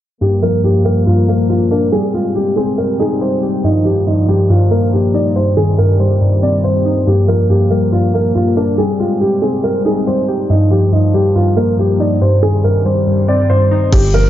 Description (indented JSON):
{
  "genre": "hip hop, drill",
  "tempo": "140 BPM",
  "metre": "4/4",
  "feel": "half-time",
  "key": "G phrygian",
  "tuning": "A4 = 440 Hz",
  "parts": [
    { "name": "dark upright piano", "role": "melody", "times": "0.2-14.3 s", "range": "Eb4 to D5", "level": "-16 LUFS", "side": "right 1 dB", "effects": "low-pass filter, ping-pong delay" },
    { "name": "warbly lo-fi synth keys", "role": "accompaniment", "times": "0.2-14.3 s", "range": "G2 to G4", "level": "-13 LUFS", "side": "left 1 dB", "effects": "chorus, low-pass filter" },
    { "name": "mellow brass ensemble", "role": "sustained chords", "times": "0.2-13.9 s", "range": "Bb2 to G4", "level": "-23 LUFS", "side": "right 1 dB", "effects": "none" },
    { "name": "hard-hitting 808-style bass", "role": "bass", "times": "13.9-14.3 s", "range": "G1", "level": "-13 LUFS", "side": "equal", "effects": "none" },
    { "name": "drill drum kit", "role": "drums", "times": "13.9-14.0 s", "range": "crash cymbal, hi-hat, kick drum", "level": "-15 LUFS", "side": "equal", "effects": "none" }
  ],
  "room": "light reverb, digital ambience",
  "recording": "dark, warm production, low-pass filter, nothing above 7.5 kHz",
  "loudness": "-11 LUFS",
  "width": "side -12 dB against mid",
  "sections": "0.2-13.9 A section",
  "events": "filter sweep 0.2-13.9",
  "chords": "0.2 Gm7; 1.9 Abmaj7; 3.6 Ebadd9/G; 5.4 Cm/G; 7.1 Gm7; 8.8 Abmaj7; 10.5 Ebadd9/G; 12.2 Cm/G",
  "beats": "| 0.21 0.64 1.07 1.50 | 1.93 2.35 2.78 3.21 | 3.64 4.07 4.50 4.92 | 5.35 5.78 6.21 6.64 | 7.07 7.50 7.92 8.35 | 8.78 9.21 9.64 10.07 | 10.50 10.93 11.35 11.78 | 12.21 12.64 13.07 13.50 | 13.93"
}